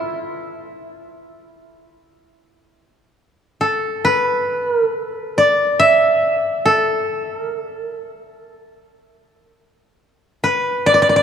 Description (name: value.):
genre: japanese traditional.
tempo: 65-72 BPM.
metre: 4/4.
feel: rubato.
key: unclear.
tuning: A4 = 440 Hz.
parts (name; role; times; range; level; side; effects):
koto; solo; 0.0-11.2 s; E4 to E5; -15 LUFS; equal; none.
room: moderate church reverb, RT60 3.4 s.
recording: dark, warm production.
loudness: -15 LUFS.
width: side -8 dB against mid.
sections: 0.0-2.3 A section; 2.3-11.2 B section.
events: none.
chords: none.